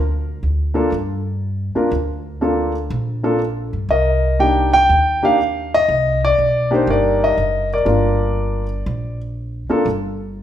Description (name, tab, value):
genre	jazz piano trio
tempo	121 BPM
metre	4/4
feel	swing 68% on 8ths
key	G minor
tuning	A4 = 440 Hz
part	upright bass	bass	0.0-10.4 s	F#1 to G2	-21 LUFS	equal	none
part	warm grand piano	melody	0.7-9.8 s	Bb3 to G5	-16 LUFS	left 1 dB	none
room	wet large studio reverb, RT60 1.2 s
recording	band playing live in one room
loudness	-16 LUFS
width	side -10 dB against mid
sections	0.0-10.4 A section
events	none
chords	0.0 Gm; 3.9 Cm9; 7.9 Gm7